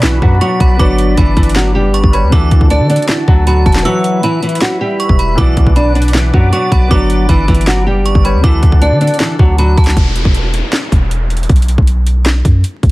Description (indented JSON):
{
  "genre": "hip hop, trap",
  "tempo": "157 BPM",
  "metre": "4/4",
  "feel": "half-time",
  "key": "unclear",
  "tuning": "A4 = 440 Hz",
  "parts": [
    { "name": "nylon-string guitar", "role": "melody", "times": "0.0-9.9 s", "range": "E3 to D5", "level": "-15 LUFS", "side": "equal", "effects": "low-pass filter" },
    { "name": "metallic FM bell", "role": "second line", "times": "0.0-10.0 s", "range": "A5 to E6", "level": "-21 LUFS", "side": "right 2 dB", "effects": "chorus, tape echo" },
    { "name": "clear concert grand piano", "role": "accompaniment", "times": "0.0-10.0 s", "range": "B2 to D5", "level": "-21 LUFS", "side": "left 2 dB", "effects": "low-pass filter" },
    { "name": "sweeping resonant pad", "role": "sustained chords", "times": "0.0-9.9 s", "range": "D4 to D6", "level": "-24 LUFS", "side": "left 1 dB", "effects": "chorus" },
    { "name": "warm 808-style bass", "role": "bass", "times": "0.0-12.9 s", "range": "E1 to D3", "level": "-12 LUFS", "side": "equal", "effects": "none" },
    { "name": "trap drum kit", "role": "drums", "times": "0.0-12.9 s", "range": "handclaps, hi-hat, kick drum, snare drum", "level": "-12 LUFS", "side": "equal", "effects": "none" },
    { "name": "downlifter", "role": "sound effects", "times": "10.0-12.9 s", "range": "none", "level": "-23 LUFS", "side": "equal", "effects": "none" }
  ],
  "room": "little or no reverb",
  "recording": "dense, heavily limited modern master, vinyl crackle",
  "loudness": "-9 LUFS",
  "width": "side -19 dB against mid",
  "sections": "0.0-10.0 A section; 10.0-12.9 B section",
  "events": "break 3.9-4.6",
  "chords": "0.0 Bm; 0.8 G; 2.3 D; 3.9 Em; 5.4 Bm; 6.9 G; 8.4 D; 10.0 N.C.; 11.5 B5",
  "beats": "0.03 0.41 | 0.79 1.18 1.56 1.94 | 2.32 2.71 3.09 3.47 | 3.85 4.23 4.62 5.00 | 5.38 5.76 6.14 6.53 | 6.91 7.29 7.67 8.05 | 8.44 8.82 9.20 9.58 | 9.97 10.35 10.73 11.11 | 11.49 11.88 12.26 12.64"
}